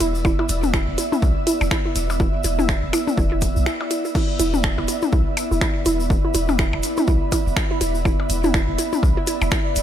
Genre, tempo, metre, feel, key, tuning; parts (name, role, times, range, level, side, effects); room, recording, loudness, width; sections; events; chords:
minimal techno; 123 BPM; 4/4; swing 59% on 16ths; A4 = 439 Hz
hollow square pluck; riff; 0.0-9.6 s; E4; -26 LUFS; right 2 dB; chorus, sidechain pumping, tape echo
punchy sub bass; bass; 0.0-9.8 s; E1 to B1; -23 LUFS; equal; sidechain pumping
techno drum kit; drums; 0.0-9.8 s; crash cymbal, finger snaps, hi-hat; -27 LUFS; equal
tube shaker; percussion; 0.0-9.8 s; -32 LUFS; left 5 dB
ethereal airy pad; texture; 0.0-9.8 s; B3 to E6; -27 LUFS; right 1 dB; ensemble chorus, built-in reverb, sidechain pumping
pulsing gated texture; texture; 0.0-9.8 s; D5; -32 LUFS; right 1 dB; chorus, built-in reverb, sidechain pumping
electronic kick drum; drums; 0.2-9.6 s; -22 LUFS; equal; overdrive
electronic percussion blips and toms; percussion; 0.2-9.5 s; -26 LUFS; left 6 dB; digital delay
light reverb; -18 LUFS; side -10 dB against mid
0.0-9.8 A section
break 3.7-4.2
0.0 E5